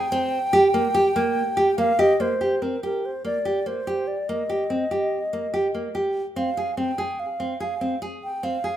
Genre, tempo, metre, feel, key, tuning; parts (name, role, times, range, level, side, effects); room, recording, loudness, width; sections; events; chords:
contemporary instrumental, contemporary; 145 BPM; 5/4; straight; A4 = 440 Hz
wooden flute; melody; 0.0-8.8 s; Bb4 to G5; -25 LUFS; equal
nylon-string guitar; arpeggios; 0.0-8.8 s; Bb3 to Ab4; -23 LUFS; right 1 dB
light reverb; close, detailed microphones; -21 LUFS; side -11 dB against mid
0.0-2.2 A section; 2.2-8.8 B section
0.1 N.C.; 6.4 Dm7b5 (rootless)